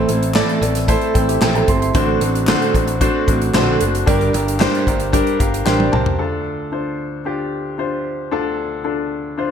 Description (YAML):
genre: piano-driven pop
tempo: 113 BPM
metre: 4/4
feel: straight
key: unclear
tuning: A4 = 440 Hz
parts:
  - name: clear baby grand piano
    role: accompaniment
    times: 0.0-9.5 s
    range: D2 to C6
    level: -19 LUFS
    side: left 3 dB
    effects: wide subtle chorus
  - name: fingerpicked steel-string acoustic guitar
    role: riff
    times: 0.0-6.2 s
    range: A2 to Bb4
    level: -20 LUFS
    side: right 6 dB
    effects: lush chorus
  - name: modern bright picked electric bass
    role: bass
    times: 0.0-6.1 s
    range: F#1 to C2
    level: -21 LUFS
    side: equal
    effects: none
  - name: modern studio drum kit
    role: drums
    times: 0.1-6.2 s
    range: handclaps, hi-hat, kick drum, snare drum, toms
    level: -20 LUFS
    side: equal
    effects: gated reverb
  - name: group handclap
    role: percussion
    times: 0.3-5.8 s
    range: none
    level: -31 LUFS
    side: left 5 dB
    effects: none
room: moderate plate reverb, RT60 1.6 s, studio reverb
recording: bright 1980s-style digital production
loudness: -15 LUFS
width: side -8 dB against mid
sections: 0.0-6.2 A section; 6.2-9.5 B section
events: grand piano fill 0.4-1.9, 5.1-6.2; drum fill 5.7-6.2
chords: 0.0 Am; 1.9 D7/A; 4.1 Gm; 6.2 Dm